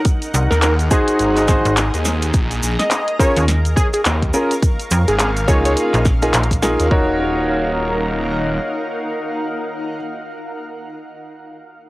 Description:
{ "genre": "glitch hop", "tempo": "105 BPM", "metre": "4/4", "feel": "swing 60% on 16ths", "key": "Eb dorian", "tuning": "A4 = 440 Hz", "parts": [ { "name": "pop drum kit", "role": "drums", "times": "0.0-6.9 s", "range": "handclaps, hi-hat, snare drum", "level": "-21 LUFS", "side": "equal", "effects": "cassette tape" }, { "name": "granular cloud pad", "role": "texture", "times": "0.0-10.0 s", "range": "Eb4 to Db6", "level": "-25 LUFS", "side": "equal", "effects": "built-in reverb, sidechain pumping, cassette tape" }, { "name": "electronic kick drum", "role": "drums", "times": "0.1-7.0 s", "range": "none", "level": "-17 LUFS", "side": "equal", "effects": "cassette tape" }, { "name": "cabasa", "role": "percussion", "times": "0.1-6.9 s", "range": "none", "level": "-28 LUFS", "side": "right 2 dB", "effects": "none" }, { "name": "slap-like FM bass", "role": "bass", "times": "0.3-6.8 s", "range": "Ab1 to F2", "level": "-17 LUFS", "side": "equal", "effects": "none" }, { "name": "plucky unison lead", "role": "melody", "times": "0.5-5.7 s", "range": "Ab4 to Eb5", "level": "-21 LUFS", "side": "equal", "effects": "analog delay" }, { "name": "phased detuned saw bass", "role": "bass", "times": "0.5-8.6 s", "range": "Eb1 to Eb2", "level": "-20 LUFS", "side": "equal", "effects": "phaser, tube saturation" }, { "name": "bright baby grand piano", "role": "stabs", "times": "0.9-10.0 s", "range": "Bb3 to Db5", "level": "-20 LUFS", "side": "equal", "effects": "sidechain pumping, cassette tape, analog delay" } ], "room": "moderate booth ambience, RT60 0.2 s", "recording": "home recording on cassette", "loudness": "-15 LUFS", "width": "side -19 dB against mid", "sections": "0.0-6.9 A section; 6.9-9.2 B section", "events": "drop 0.0-6.9; band accent 6.3", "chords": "0.1 Ab7; 2.3 Bbm7; 4.6 Db; 5.8 Bb7sus4; 6.9 Ebm7" }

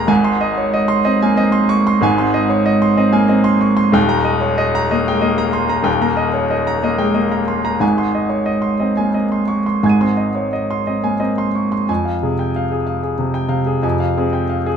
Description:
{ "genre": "neoclassical minimalist piano", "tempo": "62 BPM (dotted quarters)", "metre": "6/8", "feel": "rubato", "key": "unclear", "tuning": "A4 = 440 Hz", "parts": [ { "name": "clear grand piano", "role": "solo", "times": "0.0-14.8 s", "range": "Eb1 to Eb7", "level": "-14 LUFS", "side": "equal", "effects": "none" } ], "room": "wet studio reverb, RT60 0.7 s", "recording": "band playing live in one room", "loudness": "-14 LUFS", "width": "side -7 dB against mid", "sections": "0.0-11.9 A section; 11.9-14.8 B section", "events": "none", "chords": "0.1 Ab; 4.0 Eb; 7.8 Ab; 11.9 Fmadd9" }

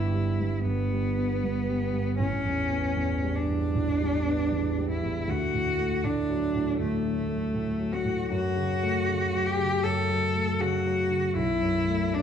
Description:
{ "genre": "classical, romantic duo for cello and grand piano", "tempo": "78 BPM", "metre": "4/4", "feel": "rubato", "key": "D major", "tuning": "A4 = 441 Hz", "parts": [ { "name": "rich cello", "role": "melody", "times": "0.0-12.2 s", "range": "A3 to A4", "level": "-28 LUFS", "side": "left 1 dB", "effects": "none" }, { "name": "dark concert grand piano", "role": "accompaniment", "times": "0.0-12.2 s", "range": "G1 to B3", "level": "-28 LUFS", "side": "right 1 dB", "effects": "none" } ], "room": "wet recital hall reverb, RT60 1.6 s", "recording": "dark, warm production", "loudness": "-25 LUFS", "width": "side -8 dB against mid", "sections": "0.0-12.2 A section", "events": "none", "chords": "0.0 Em/G; 2.2 A9; 5.3 D; 8.3 F#m; 11.4 B7(no3)" }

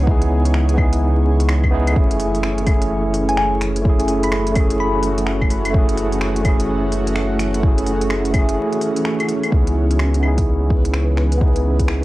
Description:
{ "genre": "future garage", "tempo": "127 BPM", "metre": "4/4", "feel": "swing 63% on 16ths", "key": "C# minor", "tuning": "A4 = 440 Hz", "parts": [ { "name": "tine electric piano", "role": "accompaniment", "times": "0.0-12.0 s", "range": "A3 to G#4", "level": "-21 LUFS", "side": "right 1 dB", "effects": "medium stereo tremolo, sidechain pumping, low-pass filter, cassette tape, tape echo" }, { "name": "granular cloud pad", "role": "sustained chords", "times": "0.0-12.0 s", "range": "E3 to C#5", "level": "-26 LUFS", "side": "left 1 dB", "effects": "built-in reverb, sidechain pumping, cassette tape" }, { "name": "warm sub bass", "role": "bass", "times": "0.0-12.0 s", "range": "F#1 to C#2", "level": "-20 LUFS", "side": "equal", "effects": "sidechain pumping" }, { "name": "electronic kick drum", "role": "drums", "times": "0.1-11.9 s", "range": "none", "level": "-17 LUFS", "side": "equal", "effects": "none" }, { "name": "organic electronic drum kit", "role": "drums", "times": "0.2-12.0 s", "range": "claves, finger snaps, hi-hat", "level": "-27 LUFS", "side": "left 1 dB", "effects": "none" }, { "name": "thumb-piano-like synth pluck", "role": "melody", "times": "3.3-5.5 s", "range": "G#5 to B5", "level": "-23 LUFS", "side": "left 2 dB", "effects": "chorus, phaser, vintage 12-bit sampler grit, cassette tape, tape echo" }, { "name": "backwards swelling texture", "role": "texture", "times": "10.8-12.0 s", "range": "B4", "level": "-30 LUFS", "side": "left 2 dB", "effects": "built-in reverb, cassette tape" } ], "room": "digital ambience", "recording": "home recording on cassette, vinyl crackle", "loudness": "-15 LUFS", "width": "side -17 dB against mid", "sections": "0.0-9.5 A section; 9.5-12.0 B section", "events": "filter sweep on tine electric piano 9.5-12.0", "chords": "0.0 C#m7; 2.0 F#m7; 9.5 C#m7" }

